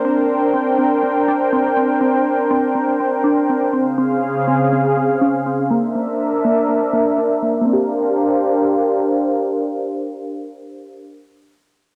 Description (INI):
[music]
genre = hip hop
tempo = 122 BPM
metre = 4/4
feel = half-time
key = Bb lydian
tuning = A4 = 439 Hz
[part]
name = warm analog pad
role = sustained chords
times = 0.0-11.1 s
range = Db3 to G5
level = -19 LUFS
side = equal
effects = chorus, low-pass filter, cassette tape
[part]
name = glassy wavetable pluck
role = arpeggios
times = 0.0-11.1 s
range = Bb3 to G4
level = -23 LUFS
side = equal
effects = chorus, low-pass filter, cassette tape, analog delay
[sound]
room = light reverb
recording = home recording on cassette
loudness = -17 LUFS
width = mono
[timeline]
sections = 0.0-7.7 A section; 7.7-11.6 B section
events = filter sweep 0.0-7.7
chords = 0.0 Bb69; 3.7 Dbmaj7; 5.7 C9; 7.7 Bb69